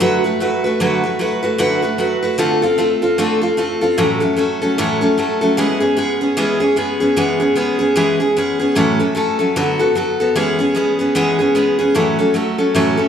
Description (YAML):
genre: rock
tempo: 151 BPM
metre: 4/4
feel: swing 59% on 8ths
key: A major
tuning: A4 = 442 Hz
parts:
  - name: picked steel-string acoustic guitar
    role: solo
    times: 0.0-13.1 s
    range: A2 to B4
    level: -14 LUFS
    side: equal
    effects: none
room: wet large studio reverb, RT60 1.4 s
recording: band playing live in one room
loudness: -14 LUFS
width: side -8 dB against mid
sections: 0.0-11.9 A section; 11.9-13.1 B section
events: none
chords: 0.0 D6; 2.4 Dm7; 4.0 A6; 5.6 E6; 8.8 A6; 9.6 D6; 10.4 E6; 11.9 A6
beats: 0.00 0.40 | 0.80 1.20 1.59 1.99 | 2.39 2.79 3.19 3.59 | 3.98 4.38 4.78 5.18 | 5.58 5.97 6.37 6.77 | 7.17 7.57 7.96 8.36 | 8.76 9.16 9.56 9.95 | 10.35 10.75 11.15 11.55 | 11.95 12.34 12.74